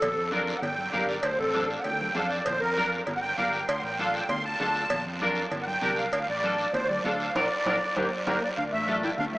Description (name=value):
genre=latin, cumbia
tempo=196 BPM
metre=4/4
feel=straight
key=D minor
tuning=A4 = 440 Hz
part: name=musette accordion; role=melody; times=0.0-9.4 s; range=C4 to C6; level=-28 LUFS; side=equal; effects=diffuse ambient delay
part: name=fingered electric bass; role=bass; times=0.0-9.4 s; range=G1 to F2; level=-39 LUFS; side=equal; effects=none
part: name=congas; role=percussion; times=0.0-9.4 s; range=none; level=-39 LUFS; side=left 1 dB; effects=none
part: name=cowbell and timbales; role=percussion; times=0.0-8.3 s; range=none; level=-34 LUFS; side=right 1 dB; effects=none
part: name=guiro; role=percussion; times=0.0-9.4 s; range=none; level=-39 LUFS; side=right 2 dB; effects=none
part: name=clean electric guitar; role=accompaniment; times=0.3-9.1 s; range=Bb3 to Bb4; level=-30 LUFS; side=equal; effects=ensemble chorus
part: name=mellow clarinet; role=second line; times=8.3-9.4 s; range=G3 to E4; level=-33 LUFS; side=left 2 dB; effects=diffuse ambient delay
room=wet huge ambient reverb, RT60 8.4 s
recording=dreamy mix soaked in reverb, small speaker sound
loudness=-25 LUFS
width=side -20 dB against mid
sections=0.0-8.6 A section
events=accordion solo 0.0-8.6; band accent 7.3-8.6; drum fill 8.0-8.6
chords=0.0 Bb; 0.6 Gm; 1.2 Dm; 2.5 Bb; 3.1 Gm; 3.7 Dm; 4.9 Bb; 5.5 Gm; 6.1 Dm; 7.3 Bb; 8.0 Gm; 8.6 Dmadd9